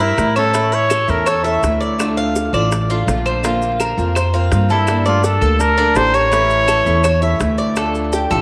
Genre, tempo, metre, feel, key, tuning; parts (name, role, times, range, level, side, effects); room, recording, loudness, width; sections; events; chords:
latin, Cuban son and guajira; 166 BPM; 4/4; straight; D minor; A4 = 440 Hz
warm trumpet; melody; 0.0-1.6, 4.7-7.4 s; E4 to C#5; -20 LUFS; equal
nylon-string guitar; second line; 0.0-1.6, 4.7-7.4 s; G3 to G4; -31 LUFS; equal
picked old ladder-braced acoustic guitar; accompaniment; 0.0-8.4 s; D3 to A4; -26 LUFS; equal
Cuban tres; arpeggios; 0.0-8.4 s; D4 to F5; -22 LUFS; equal; tape echo
upright bass; bass; 0.0-8.4 s; A1 to A2; -21 LUFS; equal
maracas; percussion; 0.0-8.4 s; -35 LUFS; equal
bongos; percussion; 0.2-8.3 s; -30 LUFS; equal
claves; percussion; 0.4-8.4 s; -32 LUFS; equal
wet spring reverb, RT60 2.7 s; -16 LUFS; mono
0.0-7.8 A section
0.0 Edim; 0.5 A; 2.0 Dm; 3.4 Bbadd9; 4.9 Gmadd9; 6.3 A; 7.8 Dm